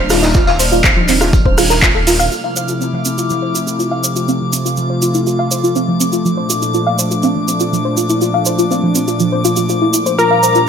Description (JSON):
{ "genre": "progressive house", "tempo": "122 BPM", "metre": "4/4", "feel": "straight", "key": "F major", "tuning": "A4 = 440 Hz", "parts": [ { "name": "warm analog pad", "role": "sustained chords", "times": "0.0-10.7 s", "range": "Bb2 to F4", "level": "-18 LUFS", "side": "equal", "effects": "chorus, vintage 12-bit sampler grit, sidechain pumping" }, { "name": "soft round pluck", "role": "arpeggios", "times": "0.0-10.6 s", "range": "F3 to F5", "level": "-16 LUFS", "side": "equal", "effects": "analog chorus, sidechain pumping, dub echo" }, { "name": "dark detuned saw bass", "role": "bass", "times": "0.0-2.3 s", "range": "Eb1", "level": "-18 LUFS", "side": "equal", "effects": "sidechain pumping" }, { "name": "drifting glass-harmonics texture", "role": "texture", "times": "0.0-10.7 s", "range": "D6 to F6", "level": "-24 LUFS", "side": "left 2 dB", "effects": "chorus, built-in reverb, sidechain pumping" }, { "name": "deep house drum kit", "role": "drums", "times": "0.1-2.2 s", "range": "handclaps, hi-hat, rim click", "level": "-16 LUFS", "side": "equal", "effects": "overdrive, small room reverb" }, { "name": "vintage drum kit", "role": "drums", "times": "0.1-2.2 s", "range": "hi-hat, snare drum, tambourine", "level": "-24 LUFS", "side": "equal", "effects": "high-pass filter on hats, small room reverb, high-pass filter on snare, high-pass filter on perc, high-pass filter on room" }, { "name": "egg shaker", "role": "percussion", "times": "0.1-10.7 s", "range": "none", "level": "-21 LUFS", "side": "right 4 dB", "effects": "none" }, { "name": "electronic kick drum", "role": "drums", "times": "0.3-1.9 s", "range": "none", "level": "-14 LUFS", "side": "equal", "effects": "overdrive, small room reverb" }, { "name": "plucky unison lead", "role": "melody", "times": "10.2-10.7 s", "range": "Bb4", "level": "-13 LUFS", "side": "equal", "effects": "none" }, { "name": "airy dreamy lead", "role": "second line", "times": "10.2-10.7 s", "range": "Bb5", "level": "-14 LUFS", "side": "equal", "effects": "chorus, sidechain pumping" } ], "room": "light reverb, small room ambience", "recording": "none", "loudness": "-12 LUFS", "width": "side -7 dB against mid", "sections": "0.0-2.3 A section; 2.3-10.7 B section", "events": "filter sweep on synth pluck 2.3-10.7", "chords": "0.0 Ebmaj7; 2.3 Fmaj7; 6.3 Bbmaj7; 10.2 Gm7/Bb", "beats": "| 0.35 0.84 1.33 1.82 | 2.32 2.81 3.30 3.79 | 4.28 4.78 5.27 5.76 | 6.25 6.74 7.23 7.73 | 8.22 8.71 9.20 9.69 | 10.19 10.68" }